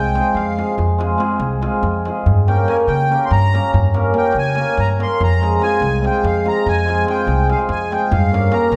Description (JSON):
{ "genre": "balkan folk, Balkan wedding band", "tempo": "286 BPM (eighths)", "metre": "7/8", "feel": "straight", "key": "F minor", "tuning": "A4 = 440 Hz", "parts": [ { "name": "accordion", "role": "second line", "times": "0.0-8.8 s", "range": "F5 to C6", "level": "-24 LUFS", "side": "equal", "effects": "light tremolo tuning" }, { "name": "cimbalom", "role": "accompaniment", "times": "0.0-8.7 s", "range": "Ab3 to Bb4", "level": "-21 LUFS", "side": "equal", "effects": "none" }, { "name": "upright bass", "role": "bass", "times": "0.0-8.8 s", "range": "C2 to Db3", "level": "-21 LUFS", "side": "equal", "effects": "none" }, { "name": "darbuka", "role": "percussion", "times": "0.2-8.8 s", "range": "none", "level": "-24 LUFS", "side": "equal", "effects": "none" } ], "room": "wet recital hall reverb, RT60 1.4 s", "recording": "dark, warm production", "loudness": "-17 LUFS", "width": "mono", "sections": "0.0-8.8 A section", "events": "accordion solo 0.0-8.8", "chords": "0.0 Fm; 2.3 Gdim; 5.2 Fm; 8.1 Gdim" }